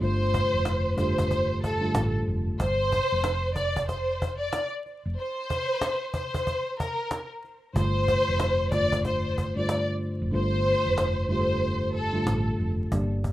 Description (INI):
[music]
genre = hip hop, boom-bap hip-hop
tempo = 93 BPM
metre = 4/4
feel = swing 62% on 16ths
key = unclear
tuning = A4 = 439 Hz
[part]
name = rich studio violin section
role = melody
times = 0.0-12.4 s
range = A4 to D5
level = -27 LUFS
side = equal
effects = none
[part]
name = mellow tine electric piano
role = accompaniment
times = 0.0-2.6, 7.7-13.3 s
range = G2 to D5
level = -28 LUFS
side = equal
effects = medium stereo tremolo, cassette tape
[part]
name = hollow-body short-scale fingered electric bass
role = bass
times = 0.0-13.3 s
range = F1 to A1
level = -29 LUFS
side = equal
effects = none
[part]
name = cajon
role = drums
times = 0.0-13.3 s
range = none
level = -31 LUFS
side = equal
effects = none
[sound]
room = light reverb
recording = rough home demo mix, vinyl crackle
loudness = -24 LUFS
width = side -14 dB against mid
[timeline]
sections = 0.0-12.9 A section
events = break 2.6-7.8; kick muted 10.3-12.9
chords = 0.0 Dm7; 2.6 F5; 7.8 Dm7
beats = | 0.02 0.66 1.31 1.95 | 2.60 3.24 3.89 4.53 | 5.18 5.82 6.47 7.11 | 7.76 8.40 9.05 9.69 | 10.34 10.98 11.63 12.27 | 12.92